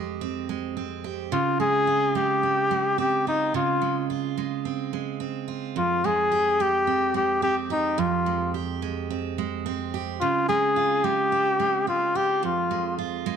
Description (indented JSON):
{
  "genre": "acoustic pop",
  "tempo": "108 BPM",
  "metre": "4/4",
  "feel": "swing 55% on 16ths",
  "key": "F minor",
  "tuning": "A4 = 440 Hz",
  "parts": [
    { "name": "picked steel-string acoustic guitar", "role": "accompaniment", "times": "0.0-13.4 s", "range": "F2 to G4", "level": "-28 LUFS", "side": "right 10 dB", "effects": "none" },
    { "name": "warm trumpet", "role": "melody", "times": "1.3-13.0 s", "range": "Eb4 to Ab4", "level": "-22 LUFS", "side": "left 2 dB", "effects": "slapback echo" }
  ],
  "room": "moderate echo chamber reverb, RT60 1.6 s, small room ambience",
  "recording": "1960s-style stereo",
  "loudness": "-22 LUFS",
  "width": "side -7 dB against mid",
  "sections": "0.0-13.4 A section",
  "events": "none",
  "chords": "0.0 Fmadd9; 1.3 Dbmaj7; 5.8 Fmadd9; 10.2 Dbmaj7; 12.4 Fm"
}